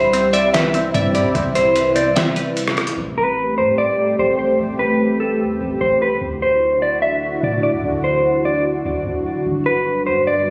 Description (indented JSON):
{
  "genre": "hip hop, atmospheric cloud-rap",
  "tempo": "148 BPM",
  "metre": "4/4",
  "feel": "half-time",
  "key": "unclear",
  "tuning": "A4 = 440 Hz",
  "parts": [
    { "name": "mellow electric guitar", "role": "melody", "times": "0.0-10.5 s", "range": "A4 to E5", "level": "-20 LUFS", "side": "equal", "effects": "low-pass filter, digital delay" },
    { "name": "dark analog pad", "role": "sustained chords", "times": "0.0-10.5 s", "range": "C3 to B4", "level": "-24 LUFS", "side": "equal", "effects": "chorus, sidechain pumping" },
    { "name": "glassy wavetable pluck", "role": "arpeggios", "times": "0.0-3.0 s", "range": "C4 to B5", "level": "-26 LUFS", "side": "equal", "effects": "chorus, low-pass filter, digital delay" },
    { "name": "soft 808-style bass", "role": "bass", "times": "0.0-10.5 s", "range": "G1 to A2", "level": "-31 LUFS", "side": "equal", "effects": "none" },
    { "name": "trip hop sampler-style drum kit", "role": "drums", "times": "0.1-3.0 s", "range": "hi-hat, kick drum, rim click, snare drum", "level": "-24 LUFS", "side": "equal", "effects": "none" }
  ],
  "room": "light reverb, digital ambience",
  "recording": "recorded on a phone in the room, club reverb, compression",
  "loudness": "-18 LUFS",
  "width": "mono",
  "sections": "0.0-3.0 A section; 3.0-10.5 B section",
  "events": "break 2.2-3.0",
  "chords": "0.0 Cmaj7; 3.0 Am7; 6.2 Dadd9; 9.5 Gmaj7"
}